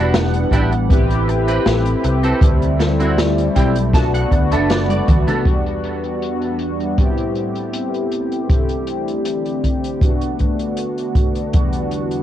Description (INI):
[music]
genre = vaporwave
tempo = 79 BPM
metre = 4/4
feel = straight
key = A dorian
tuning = A4 = 440 Hz
[part]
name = mellow synth brass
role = accompaniment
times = 0.0-12.2 s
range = E2 to F#5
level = -20 LUFS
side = left 1 dB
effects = wide subtle chorus, tape echo
[part]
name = warbly tape-like pad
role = sustained chords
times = 0.0-12.2 s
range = D3 to D6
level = -28 LUFS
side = left 1 dB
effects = chorus, built-in reverb
[part]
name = semi-hollow electric guitar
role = riff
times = 0.0-5.5 s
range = B3 to A5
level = -24 LUFS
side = right 2 dB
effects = ensemble chorus, vintage 12-bit sampler grit, tape echo
[part]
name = mellow fretless electric bass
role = bass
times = 0.0-5.2 s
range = E1 to D2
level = -18 LUFS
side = equal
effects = analog chorus
[part]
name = open jazz drum kit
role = drums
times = 0.1-12.2 s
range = hi-hat, snare drum, toms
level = -23 LUFS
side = left 1 dB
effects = low-pass filter on hats, low-pass filter on toms, low-pass filter on snare, low-pass filter on room
[part]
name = kick drum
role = drums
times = 0.5-11.7 s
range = none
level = -16 LUFS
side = equal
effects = none
[sound]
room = studio reverb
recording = worn, warbling old tape, cassette tape, warbly pitch drift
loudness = -15 LUFS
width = side -11 dB against mid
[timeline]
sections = 0.0-5.5 A section; 5.5-12.2 B section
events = clean electric guitar fill 3.2-5.5; drum fill 4.9-5.5; filter sweep on drum 5.5-12.2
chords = 0.0 Em7; 0.9 Am7; 2.4 D9sus4; 3.9 Bm7; 5.5 Em7; 7.0 Am7; 8.5 D9sus4; 10.0 Bm7; 11.5 Em7